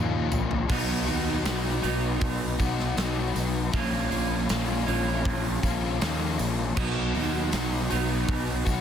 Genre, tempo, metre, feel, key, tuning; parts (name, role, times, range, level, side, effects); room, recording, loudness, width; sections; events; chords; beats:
rock, shoegaze and dream pop; 79 BPM; 4/4; straight; B lydian; A4 = 440 Hz
overdriven electric guitar; riff; 0.0-8.8 s; A#2 to D#4; -31 LUFS; right 11 dB; reverse reverb
overdriven semi-hollow guitar; riff; 0.0-8.8 s; A#2 to F#4; -30 LUFS; left 9 dB; analog chorus
fuzz fingered electric bass; bass; 0.0-8.8 s; A#1 to D#2; -29 LUFS; equal; overdrive
big rock drum kit; drums; 0.3-8.8 s; crash cymbal, hi-hat, kick drum, snare drum, toms; -30 LUFS; equal
tambourine; percussion; 0.3-8.8 s; -44 LUFS; right 10 dB
light reverb, small room ambience; dense, heavily limited modern master; -24 LUFS; side -8 dB against mid
0.0-8.8 A section
drum fill 0.0-0.7
0.0 A#m; 0.7 B; 3.7 A#m; 6.8 B
| 0.70 1.46 2.21 2.97 | 3.73 4.49 5.25 6.01 | 6.77 7.53 8.29